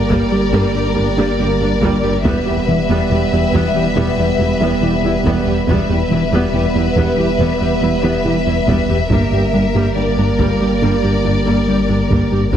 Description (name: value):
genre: cinematic, hybrid orchestral and electronic film score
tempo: 70 BPM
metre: 4/4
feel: straight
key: E minor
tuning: A4 = 440 Hz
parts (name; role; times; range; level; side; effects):
- warm symphonic violin section; second line; 0.0-12.6 s; Bb4 to E5; -20 LUFS; left 5 dB; none
- mellow trombone section; sustained chords; 0.0-12.6 s; G3 to B3; -20 LUFS; right 4 dB; none
- saturated sub bass; bass; 0.0-12.6 s; E1 to G1; -25 LUFS; left 1 dB; none
- dark studio viola section; accompaniment; 0.1-12.6 s; G3 to G4; -22 LUFS; right 1 dB; none
- smooth synth bass; riff; 0.1-12.6 s; E2 to G3; -20 LUFS; left 2 dB; none
- dark symphonic cello section; bass; 0.1-12.6 s; E2 to G2; -23 LUFS; right 3 dB; none
- rich symphonic double bass section; bass; 0.1-12.6 s; E1 to G1; -24 LUFS; right 3 dB; none
- taiko ensemble; drums; 0.1-12.6 s; none; -23 LUFS; equal; none
room: moderate concert hall reverb, RT60 2.1 s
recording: heavily compressed radio sound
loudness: -13 LUFS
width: side -9 dB against mid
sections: 0.0-12.6 A section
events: none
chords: 0.0 Gm; 2.2 Em; 9.1 Gm